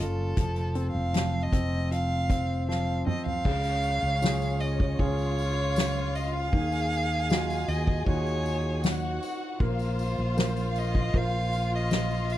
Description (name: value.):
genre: pop ballad.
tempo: 78 BPM.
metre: 4/4.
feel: straight.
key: unclear.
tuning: A4 = 441 Hz.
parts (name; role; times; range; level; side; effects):
warm violin; melody; 0.0-12.4 s; A4 to F5; -32 LUFS; right 1 dB; slapback echo.
warm concert grand piano; accompaniment; 0.0-12.4 s; Db3 to C5; -33 LUFS; equal; none.
mellow fretless electric bass; bass; 0.0-12.4 s; F1 to Eb2; -29 LUFS; equal; none.
soft-mallet drum kit; drums; 0.4-12.4 s; crash cymbal, hi-hat, kick drum, ride cymbal, snare drum, toms; -30 LUFS; equal; none.
warm studio violin section; second line; 3.5-12.4 s; Db4 to Ab5; -36 LUFS; left 2 dB; none.
tambourine; percussion; 3.6-12.4 s; none; -49 LUFS; left 8 dB; none.
room: little or no reverb.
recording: none.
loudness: -25 LUFS.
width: side -13 dB against mid.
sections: 0.0-3.5 A section; 3.5-12.4 B section.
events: drum fill 2.7-3.5.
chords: 0.4 F5; 3.5 Db; 6.5 Ebmadd9; 9.6 Bbsus2.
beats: | 0.38 1.15 1.92 2.68 | 3.45 4.22 4.99 5.76 | 6.53 7.30 8.07 8.84 | 9.61 10.38 11.15 11.91.